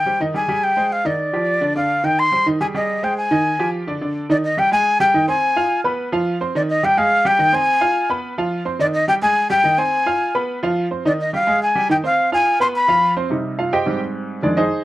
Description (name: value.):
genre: latin.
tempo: 213 BPM.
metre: 4/4.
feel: straight.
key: unclear.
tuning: A4 = 440 Hz.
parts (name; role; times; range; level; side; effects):
jazz flute; melody; 0.0-13.1 s; D5 to C6; -16 LUFS; left 1 dB; none.
bright upright piano; accompaniment; 0.1-14.8 s; F2 to F6; -21 LUFS; right 2 dB; none.
room: moderate studio reverb, RT60 0.5 s.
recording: worn, warbling old tape, cassette tape, warbly pitch drift.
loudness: -16 LUFS.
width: side -16 dB against mid.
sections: 0.0-4.3 A section; 4.3-13.3 B section; 13.3-14.8 C section.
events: upright piano solo 13.3-14.8.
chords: 0.3 Abmaj7; 0.9 Fm7; 1.5 G5; 2.0 Cm; 2.6 Abmaj7; 3.2 Fm7; 3.7 G5; 4.3 Ebadd11; 4.9 Abmaj7; 5.4 Fm; 6.0 F5; 6.5 Ebadd11; 7.1 Abmaj7; 7.7 Fm; 8.2 F5; 8.8 Ebadd11; 9.4 Abmaj7; 9.9 Fm; 10.5 F5; 11.0 Fm9/Eb; 11.6 Abmaj7; 12.2 Fm; 12.7 F5; 13.3 Cm; 13.9 Abmaj7.